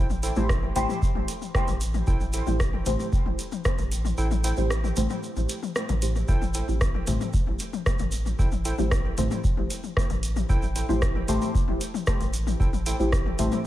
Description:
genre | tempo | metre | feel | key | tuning
dub techno | 114 BPM | 4/4 | straight | A minor | A4 = 440 Hz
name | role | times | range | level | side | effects
warbly lo-fi synth keys | riff | 0.0-13.0 s | E4 to G5 | -37 LUFS | right 2 dB | chorus, sidechain pumping, dub echo
round analog bass | bass | 0.0-13.5 s | A1 | -28 LUFS | equal | sidechain pumping
egg shaker | percussion | 0.1-13.6 s | none | -39 LUFS | right 3 dB | none
electronic toms and congas | percussion | 0.1-13.6 s | none | -34 LUFS | left 8 dB | overdrive, sidechain pumping on toms, sidechain pumping on perc, dub echo
booming analog drum machine | drums | 0.2-13.5 s | hi-hat, rim click | -32 LUFS | equal | dub echo
deep mellow chord stab | stabs | 0.4-13.6 s | A3 to C5 | -30 LUFS | equal | chorus, phaser, dub echo
electronic kick drum | drums | 0.5-13.2 s | none | -25 LUFS | equal | none
room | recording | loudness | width
light reverb | none | -23 LUFS | side -14 dB against mid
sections
0.0-13.7 A section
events
kick drops out 4.2-6.3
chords
0.0 Am7

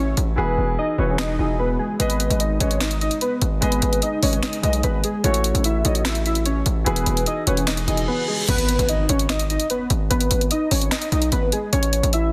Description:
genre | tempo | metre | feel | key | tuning
hip hop, trap | 148 BPM | 4/4 | half-time | G# phrygian | A4 = 440 Hz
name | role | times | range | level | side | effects
warbly lo-fi synth keys | melody | 0.0-12.3 s | G#3 to E5 | -26 LUFS | equal | chorus, low-pass filter, digital delay
dark grand piano | accompaniment | 0.0-8.5 s | E3 to D#5 | -29 LUFS | equal | low-pass filter
distorted 808-style bass | bass | 0.0-12.3 s | E1 to B1 | -24 LUFS | equal | distortion
trap drum kit | drums | 0.2-12.2 s | crash cymbal, finger snaps, hi-hat, snare drum | -27 LUFS | equal | none
reverse cymbal and impact | sound effects | 7.9-10.1 s | none | -32 LUFS | equal | none
room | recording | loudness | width
light reverb, digital ambience | dense, heavily limited modern master | -21 LUFS | mono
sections
0.0-8.5 A section; 8.5-12.3 B section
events
hi-hats muted 0.4-2.0; reverse cymbal 7.9-8.5; impact 8.5-10.1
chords
0.4 Eadd9; 2.0 G#m; 5.2 A6; 6.9 Eadd9; 8.5 G#m; 11.7 A

